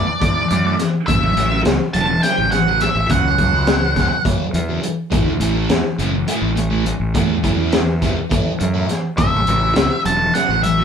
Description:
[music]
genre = psychedelic rock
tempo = 207 BPM (eighths)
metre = 7/8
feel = straight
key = A major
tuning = A4 = 440 Hz
[part]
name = octave-fuzz lead guitar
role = melody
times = 0.0-4.2, 9.2-10.8 s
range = D5 to A5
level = -18 LUFS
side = right 1 dB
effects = distortion
[part]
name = thick fuzz guitar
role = riff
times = 0.0-10.8 s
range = F#2 to A3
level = -21 LUFS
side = equal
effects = distortion, phaser
[part]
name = fuzz fingered electric bass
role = bass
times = 0.0-10.8 s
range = E1 to F#2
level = -21 LUFS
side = equal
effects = overdrive
[part]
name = crunchy breakbeat drum kit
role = drums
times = 0.2-10.8 s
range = hi-hat, kick drum, snare drum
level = -20 LUFS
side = equal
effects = none
[sound]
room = moderate studio ambience, RT60 0.5 s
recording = band playing live in one room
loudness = -15 LUFS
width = side -7 dB against mid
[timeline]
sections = 0.0-10.8 A section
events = none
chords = 0.0 Asus4; 1.1 F#m; 5.1 A5; 9.2 F#m

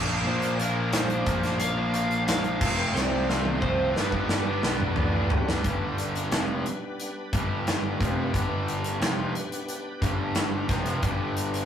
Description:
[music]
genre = classic rock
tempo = 89 BPM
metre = 4/4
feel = straight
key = G mixolydian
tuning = A4 = 439 Hz
[part]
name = picked old ladder-braced acoustic guitar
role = accompaniment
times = 0.0-5.7 s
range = F2 to G4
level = -36 LUFS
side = right 4 dB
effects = none
[part]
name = bright tonewheel organ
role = sustained chords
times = 0.0-11.7 s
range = G3 to D5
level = -37 LUFS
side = left 1 dB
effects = none
[part]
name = overdriven electric guitar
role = riff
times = 0.0-11.7 s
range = F2 to D4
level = -29 LUFS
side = equal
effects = none
[part]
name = fuzz picked electric bass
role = bass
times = 0.0-11.7 s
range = F1 to C2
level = -31 LUFS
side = equal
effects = overdrive
[part]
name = overdriven slide guitar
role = melody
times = 0.3-4.9 s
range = Bb4 to F5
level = -32 LUFS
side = left 2 dB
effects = none
[part]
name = big rock drum kit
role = drums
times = 0.4-11.7 s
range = crash cymbal, hi-hat, kick drum, snare drum, toms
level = -28 LUFS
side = equal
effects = none
[sound]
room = moderate small room ambience, RT60 0.5 s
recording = rough rehearsal-room recording, warm saturation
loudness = -24 LUFS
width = side -9 dB against mid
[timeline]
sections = 0.0-5.6 A section; 5.6-11.7 B section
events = drum fill 2.9-5.6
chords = 0.0 Bb; 2.6 F; 4.0 G

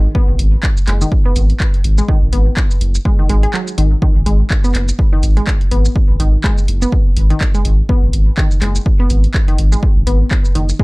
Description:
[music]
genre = minimal techno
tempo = 124 BPM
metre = 4/4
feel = swing 57% on 16ths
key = G# minor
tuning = A4 = 440 Hz
[part]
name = saturated sub bass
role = bass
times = 0.0-10.7 s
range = F#1 to G#1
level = -13 LUFS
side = equal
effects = sidechain pumping
[part]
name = resonant blip pluck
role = riff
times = 0.1-10.8 s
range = D#3 to G#4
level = -22 LUFS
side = equal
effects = chorus, sidechain pumping, digital delay
[part]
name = electronic kick drum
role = drums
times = 0.1-10.8 s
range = none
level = -14 LUFS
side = equal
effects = none
[part]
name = punchy analog drum machine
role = drums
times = 0.4-10.8 s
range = handclaps, hi-hat, shaker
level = -24 LUFS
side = equal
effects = none
[sound]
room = little or no reverb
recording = dark, warm production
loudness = -11 LUFS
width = side -24 dB against mid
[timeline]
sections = 0.0-10.8 A section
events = break 3.5-4.0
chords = none

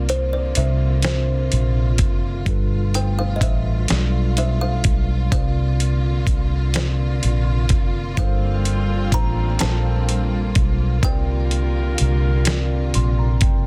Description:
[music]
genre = slow six-eight R&B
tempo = 42 BPM (dotted quarters)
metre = 6/8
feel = straight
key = unclear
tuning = A4 = 442 Hz
[part]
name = kalimba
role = melody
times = 0.0-12.9 s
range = C5 to Bb5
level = -32 LUFS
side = equal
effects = tape echo
[part]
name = mellow tine electric piano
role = accompaniment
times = 0.0-13.7 s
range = C3 to C6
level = -30 LUFS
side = equal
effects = none
[part]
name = warm symphonic string section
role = sustained chords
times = 0.0-13.7 s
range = B2 to F4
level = -33 LUFS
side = equal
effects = none
[part]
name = vintage muted fingered electric bass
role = bass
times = 0.0-13.7 s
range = F#1 to C2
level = -22 LUFS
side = equal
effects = none
[part]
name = dusty soul sampler-style drum kit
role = drums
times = 0.1-13.6 s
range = hi-hat, kick drum, snare drum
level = -23 LUFS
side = equal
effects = none
[part]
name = warm horn section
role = stabs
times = 8.2-13.4 s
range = F3 to Bb4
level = -34 LUFS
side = equal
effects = tape echo
[sound]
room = little or no reverb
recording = dense, heavily limited modern master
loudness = -20 LUFS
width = mono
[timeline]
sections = 0.0-13.7 A section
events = tine electric piano fill 12.5-13.7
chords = 0.0 C9sus4; 2.5 G9; 5.3 C9sus4; 8.2 Gm11; 11.0 C9sus4

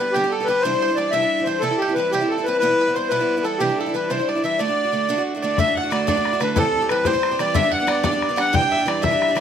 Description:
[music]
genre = celtic folk, Celtic jig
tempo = 122 BPM (dotted quarters)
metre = 6/8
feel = straight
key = D mixolydian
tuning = A4 = 440 Hz
[part]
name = accordion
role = melody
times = 0.0-9.4 s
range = G4 to G5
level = -20 LUFS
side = left 1 dB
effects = none
[part]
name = bluegrass banjo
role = second line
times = 0.0-9.3 s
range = G4 to G5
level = -30 LUFS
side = right 5 dB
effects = none
[part]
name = rich fiddle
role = second line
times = 0.0-9.4 s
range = G4 to G5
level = -30 LUFS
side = left 4 dB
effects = none
[part]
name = picked steel-string acoustic guitar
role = accompaniment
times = 0.0-9.4 s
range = E2 to G4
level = -24 LUFS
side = right 3 dB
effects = none
[part]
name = bodhran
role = percussion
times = 5.6-9.4 s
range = none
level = -25 LUFS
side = left 5 dB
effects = none
[sound]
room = light reverb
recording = close, detailed microphones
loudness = -18 LUFS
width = side -8 dB against mid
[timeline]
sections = 0.0-5.6 A section; 5.6-9.4 B section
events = none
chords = 0.0 G/D; 0.6 Cadd9; 1.6 C; 2.6 Em; 3.6 Cadd9; 4.6 D; 6.6 Am7; 7.6 G; 8.5 Cadd9

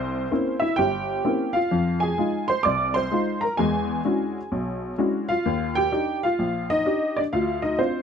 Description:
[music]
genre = solo jazz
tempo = 128 BPM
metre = 4/4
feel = swing 65% on 8ths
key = Eb major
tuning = A4 = 440 Hz
[part]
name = honky-tonk upright piano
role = solo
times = 0.0-8.0 s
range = G1 to D6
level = -21 LUFS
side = equal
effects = none
[sound]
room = little or no reverb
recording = close, detailed microphones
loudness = -21 LUFS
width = side -7 dB against mid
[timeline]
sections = 0.0-8.0 A section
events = none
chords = 0.0 C7b9; 1.7 Fm7; 3.6 E13; 5.4 Ebmaj7; 7.3 Dm7

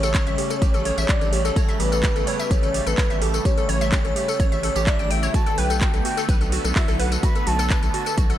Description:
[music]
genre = progressive house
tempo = 127 BPM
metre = 4/4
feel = straight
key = A mixolydian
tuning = A4 = 438 Hz
[part]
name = soft octave-layered synth lead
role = melody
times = 0.0-8.2 s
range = A4 to B5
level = -27 LUFS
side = left 1 dB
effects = chorus, tremolo, sidechain pumping, tape echo
[part]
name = airy dreamy lead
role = second line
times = 0.0-8.2 s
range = A4 to B5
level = -33 LUFS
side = right 1 dB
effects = chorus, cassette tape, sidechain pumping, digital delay
[part]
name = filtered supersaw swell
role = sustained chords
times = 0.0-8.4 s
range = C#3 to B3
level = -30 LUFS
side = right 1 dB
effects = phaser, sidechain pumping
[part]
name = glassy wavetable pluck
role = arpeggios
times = 0.0-8.3 s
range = F#4 to G5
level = -29 LUFS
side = left 1 dB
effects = chorus, sidechain pumping, digital delay
[part]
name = round analog bass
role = bass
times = 0.0-8.4 s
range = A1 to B1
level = -25 LUFS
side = equal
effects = sidechain pumping
[part]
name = house drum kit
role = drums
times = 0.0-8.4 s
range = handclaps, hi-hat, tambourine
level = -29 LUFS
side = equal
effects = sidechain pumping on hats, sidechain pumping on cymbals, sidechain pumping on perc
[part]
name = vintage brush drum kit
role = drums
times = 0.0-8.3 s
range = ride cymbal, snare drum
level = -38 LUFS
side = right 3 dB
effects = sidechain pumping on cymbals, high-pass filter on cymbals, high-pass filter on snare, high-pass filter on room
[part]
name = electronic kick drum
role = drums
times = 0.1-8.3 s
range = none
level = -21 LUFS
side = equal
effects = none
[sound]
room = digital ambience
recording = none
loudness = -18 LUFS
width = side -12 dB against mid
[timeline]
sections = 0.0-8.4 A section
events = none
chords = 0.0 A7; 5.3 Bm7

